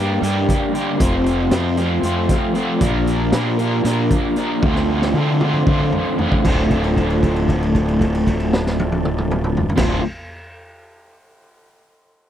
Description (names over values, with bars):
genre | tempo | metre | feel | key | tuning
psychedelic rock | 231 BPM (eighths) | 7/8 | straight | D minor | A4 = 440 Hz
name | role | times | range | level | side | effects
mellow tonewheel organ | sustained chords | 0.0-10.0 s | F4 to C6 | -30 LUFS | right 3 dB | slow rotary speaker, chorus vibrato
crunchy overdriven guitar | riff | 0.0-10.0 s | D2 to Bb4 | -19 LUFS | equal | harmonic tremolo
fuzz fingered electric bass | bass | 0.0-10.0 s | D1 to D3 | -21 LUFS | equal | overdrive
raw garage drum kit | drums | 0.2-9.9 s | crash cymbal, hi-hat, kick drum, snare drum, toms | -21 LUFS | equal | none
room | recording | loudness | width
little or no reverb | dry, close 1970s-style studio recording | -16 LUFS | side -10 dB against mid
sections
0.0-6.4 A section; 6.4-10.1 B section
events
drum fill 4.6-6.4; held note 6.4-9.8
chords
0.0 Gm7; 1.0 F; 2.8 Bb6; 4.6 Dm7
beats
0.22 0.48 0.73 | 0.99 1.25 1.51 1.77 2.03 2.29 2.55 | 2.81 3.07 3.33 3.59 3.85 4.11 4.37 | 4.62 4.88 5.14 5.40 5.66 5.92 6.18 | 6.44 6.70 6.96 7.22 7.48 7.74 8.01 | 8.27 8.53 8.79 9.05 9.31 9.57 9.83